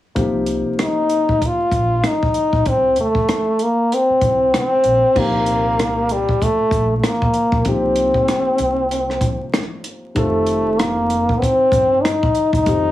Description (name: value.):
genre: hip hop, jazz-hop.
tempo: 96 BPM.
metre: 4/4.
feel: swing 60% on 16ths.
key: C dorian.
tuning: A4 = 441 Hz.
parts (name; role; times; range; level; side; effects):
dark concert grand piano; accompaniment; 0.2-12.9 s; Bb2 to A4; -25 LUFS; left 2 dB; none.
upright bass; bass; 0.2-12.9 s; E1 to Eb2; -25 LUFS; equal; none.
compact cocktail drum kit; drums; 0.2-12.8 s; crash cymbal, hi-hat, kick drum, rim click; -21 LUFS; equal; none.
French horn with straight mute; melody; 0.8-12.9 s; G3 to F4; -16 LUFS; left 1 dB; none.
room: moderate studio reverb, RT60 0.5 s.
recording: heavily compressed radio sound, vinyl crackle, small room ambience.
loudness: -15 LUFS.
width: side -14 dB against mid.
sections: 0.2-5.2 A section; 5.2-12.9 B section.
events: none.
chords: 0.2 Cm7; 10.2 F9.